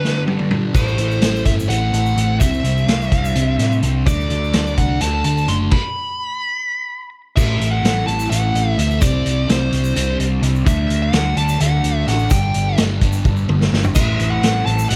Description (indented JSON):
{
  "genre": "psychedelic rock",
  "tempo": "254 BPM (eighths)",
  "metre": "7/8",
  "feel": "straight",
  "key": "A dorian",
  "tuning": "A4 = 440 Hz",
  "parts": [
    { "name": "fuzz lead guitar", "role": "melody", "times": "0.0-15.0 s", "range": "B4 to C6", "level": "-26 LUFS", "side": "equal", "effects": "distortion, slapback echo" },
    { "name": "soft string machine", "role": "sustained chords", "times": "0.0-15.0 s", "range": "F#3 to F#5", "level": "-35 LUFS", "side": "equal", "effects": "none" },
    { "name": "fuzz guitar", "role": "riff", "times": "0.0-15.0 s", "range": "G2 to D4", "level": "-24 LUFS", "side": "equal", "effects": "distortion, phaser" },
    { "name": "vintage drum kit", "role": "drums", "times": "0.0-15.0 s", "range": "crash cymbal, hi-hat, kick drum, snare drum, toms", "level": "-22 LUFS", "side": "equal", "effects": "none" },
    { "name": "hollow-body short-scale picked electric bass", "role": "bass", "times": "0.7-15.0 s", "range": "F#1 to A2", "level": "-22 LUFS", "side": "equal", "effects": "none" },
    { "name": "tube shaker", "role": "percussion", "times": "0.8-15.0 s", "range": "none", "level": "-40 LUFS", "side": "equal", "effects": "none" }
  ],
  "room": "small room ambience",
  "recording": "none",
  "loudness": "-18 LUFS",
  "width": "mono",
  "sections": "0.8-7.4 A section; 7.4-15.0 B section",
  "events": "break 0.0-0.8; drum fill 0.0-0.8, 13.3-14.0; stop 5.7-7.4",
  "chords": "0.0 G; 0.8 Am; 2.4 Cadd9; 4.1 D; 5.7 N.C.; 7.4 Am; 9.0 Cadd9; 10.7 D; 12.3 G; 14.0 Am"
}